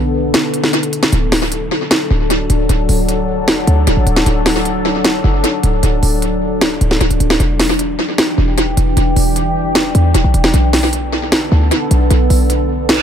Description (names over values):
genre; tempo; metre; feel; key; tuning
hip hop, trap; 153 BPM; 4/4; half-time; D major; A4 = 440 Hz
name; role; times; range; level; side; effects
deep dark ambient pad; sustained chords; 0.0-13.0 s; D3 to A4; -18 LUFS; left 1 dB; chorus, built-in reverb
short 808-style bass; bass; 0.0-13.0 s; D1 to E2; -14 LUFS; equal; none
trap drum kit; drums; 0.3-13.0 s; hi-hat, snare drum; -16 LUFS; equal; tape echo
reverse cymbal; sound effects; 13.0 s; none; -16 LUFS; right 6 dB; none
room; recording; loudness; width
light reverb, digital ambience; echo-heavy mix; -12 LUFS; side -9 dB against mid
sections
0.0-13.0 A section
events
kick muted 0.3-1.1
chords
0.0 Bm7; 1.1 D; 7.4 Em7; 10.5 Bm7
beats
0.34 0.73 | 1.12 1.52 1.91 2.30 | 2.69 3.09 3.48 3.87 | 4.26 4.66 5.05 5.44 | 5.83 6.22 6.62 7.01 | 7.40 7.79 8.18 8.58 | 8.97 9.36 9.75 10.14 | 10.54 10.93 11.32 11.71 | 12.11 12.50 12.89